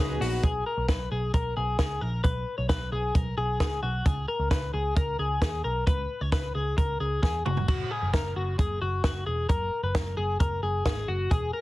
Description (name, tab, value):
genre	jangly indie pop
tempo	132 BPM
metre	4/4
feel	straight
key	B major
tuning	A4 = 442 Hz
part	warbly lo-fi synth keys	accompaniment	0.0-0.5 s	B3 to B4	-37 LUFS	equal	chorus
part	twelve-string electric guitar	arpeggios	0.0-11.6 s	F#4 to C#5	-30 LUFS	left 2 dB	slapback echo
part	vintage muted picked electric bass	bass	0.0-11.5 s	E1 to E2	-30 LUFS	equal	none
part	compact cocktail drum kit	drums	0.2-11.4 s	crash cymbal, hi-hat, kick drum, snare drum, toms	-26 LUFS	equal	none
room	light reverb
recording	heavily compressed radio sound, multiband compression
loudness	-25 LUFS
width	side -18 dB against mid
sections	0.4-11.6 A section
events	drum fill 7.2-7.7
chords	0.4 B5; 4.1 C#5; 7.5 N.C.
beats	| 0.43 0.89 1.34 1.79 | 2.24 2.70 3.15 3.60 | 4.06 4.51 4.96 5.42 | 5.87 6.32 6.78 7.23 | 7.68 8.14 8.59 9.04 | 9.50 9.95 10.40 10.86 | 11.31